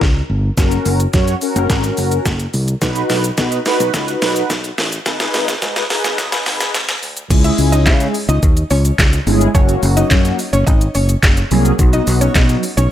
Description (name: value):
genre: dance-pop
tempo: 107 BPM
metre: 4/4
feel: straight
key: B major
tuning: A4 = 440 Hz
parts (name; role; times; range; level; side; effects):
- fingered electric bass; bass; 0.0-12.9 s; F#1 to C#3; -17 LUFS; equal; sidechain pumping
- smooth R&B drum kit; drums; 0.0-12.9 s; crash cymbal, handclaps, hi-hat, kick drum, shaker, snare drum; -16 LUFS; equal; none
- mellow synth brass; accompaniment; 0.6-12.6 s; F#3 to C#5; -19 LUFS; equal; chorus
- mallet-like synth pluck; melody; 7.4-12.9 s; C#4 to E5; -22 LUFS; equal; chorus, sidechain pumping, tape echo
room: light reverb, digital ambience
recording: high-pass filter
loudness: -13 LUFS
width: side -11 dB against mid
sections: 0.0-7.3 A section; 7.3-12.9 B section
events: build-up 0.0-7.3; drum fill 0.0-7.3; filter sweep 0.0-7.3; drop 7.3-12.9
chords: 0.0 N.C.; 0.6 F#; 2.8 B; 5.1 G#m; 7.3 C#m; 9.5 F#; 11.8 B